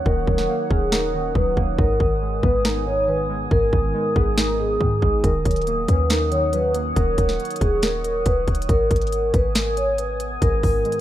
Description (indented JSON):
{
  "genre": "hip hop, trap",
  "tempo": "139 BPM",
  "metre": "4/4",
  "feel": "half-time",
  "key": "Eb minor",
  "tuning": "A4 = 440 Hz",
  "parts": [
    { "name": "warbly lo-fi synth keys", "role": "accompaniment", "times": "0.0-11.0 s", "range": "Ab2 to Eb4", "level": "-28 LUFS", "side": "equal", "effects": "chorus" },
    { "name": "deep dark ambient pad", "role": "sustained chords", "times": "0.0-11.0 s", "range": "Cb4 to Eb6", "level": "-28 LUFS", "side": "right 2 dB", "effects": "chorus, built-in reverb" },
    { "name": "vibraphone with soft mallets", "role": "melody", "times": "0.1-11.0 s", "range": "Ab4 to Db5", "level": "-23 LUFS", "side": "equal", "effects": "digital delay" },
    { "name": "clean 808-style bass", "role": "bass", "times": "0.1-10.8 s", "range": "Eb1 to Ab2", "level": "-24 LUFS", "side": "equal", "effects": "none" },
    { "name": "trap drum kit", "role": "drums", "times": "0.1-11.0 s", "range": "hi-hat, kick drum, snare drum", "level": "-22 LUFS", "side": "equal", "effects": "none" }
  ],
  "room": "little or no reverb",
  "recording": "rough home demo mix",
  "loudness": "-18 LUFS",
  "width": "side -13 dB against mid",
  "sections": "0.0-11.0 A section",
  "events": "break 0.0-5.2",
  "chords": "0.0 Ebm7; 1.8 Abm; 5.2 Ebm7; 8.7 Abm"
}